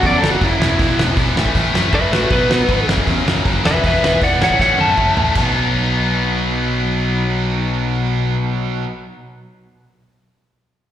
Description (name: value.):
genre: punk rock.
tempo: 158 BPM.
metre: 4/4.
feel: straight.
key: B major.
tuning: A4 = 439 Hz.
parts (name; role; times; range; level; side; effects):
lightly driven lead guitar; melody; 0.0-5.4 s; E4 to A5; -17 LUFS; equal; slapback echo.
cranked stack guitar; riff; 0.0-8.9 s; E2 to B3; -20 LUFS; left 7 dB; overdrive, slapback echo.
tight distorted guitar; riff; 0.0-8.9 s; F#2 to E4; -22 LUFS; right 12 dB; distortion, slapback echo.
growling picked electric bass; bass; 0.0-8.4 s; E1 to B2; -20 LUFS; right 1 dB; overdrive.
loose indie drum kit; drums; 0.0-5.4 s; crash cymbal, hi-hat, kick drum, snare drum, toms; -20 LUFS; right 1 dB; none.
room: small room ambience.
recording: live gig heard through the venue's PA, recital hall reverb.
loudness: -14 LUFS.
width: side -10 dB against mid.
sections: 0.0-5.4 A section; 5.4-8.4 B section.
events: lead electric guitar solo 0.0-5.4; drum fill 4.6-5.4.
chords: 0.0 F#; 0.6 E; 1.4 A; 2.3 B; 2.9 F#; 3.6 E; 4.4 A; 5.4 B.